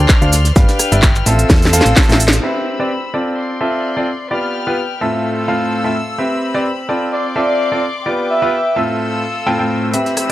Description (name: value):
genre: piano house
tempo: 128 BPM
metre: 4/4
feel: swing 54% on 16ths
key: C major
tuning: A4 = 440 Hz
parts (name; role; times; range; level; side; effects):
- rich chamber string section; sustained chords; 0.0-10.3 s; C4 to F6; -22 LUFS; left 2 dB; sidechain pumping, low-pass filter
- clear grand piano; riff; 0.0-10.3 s; A2 to G5; -18 LUFS; equal; sidechain pumping, low-pass filter, analog delay
- solid FM bass; bass; 0.0-2.4 s; G1 to E2; -14 LUFS; equal; transformer saturation, sidechain pumping
- damped 70s drum kit; drums; 0.1-2.4, 9.9-10.3 s; hi-hat, snare drum; -27 LUFS; right 1 dB; none
- electronic kick drum; drums; 0.1-2.1 s; none; -11 LUFS; equal; none
- house drum kit; drums; 0.1-10.3 s; crash cymbal, handclaps, hi-hat, rim click, shaker, snare drum; -16 LUFS; equal; low-pass filter on hats, low-pass filter on perc, low-pass filter on snare, low-pass filter on cymbals
- breathy flute-like synth lead; melody; 7.1-8.8 s; D5 to E5; -18 LUFS; right 1 dB; analog chorus, analog delay
- riser; sound effects; 10.1-10.3 s; none; -30 LUFS; right 1 dB; none
room: light reverb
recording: dry, gritty hardware recording, transformer saturation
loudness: -13 LUFS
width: side -14 dB against mid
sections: 0.0-2.4 A section; 2.4-9.9 B section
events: drum fill 1.5-2.4; band accent 2.3; filter sweep on grand piano 2.4-9.9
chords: 0.0 Dm7; 0.6 G7; 1.3 Fmaj7/A; 2.4 Cmaj7; 3.4 Dm7; 4.3 G7; 5.0 Fmaj7/A; 6.2 Cmaj7; 7.1 Dm7; 8.1 G7; 8.8 Fmaj7/A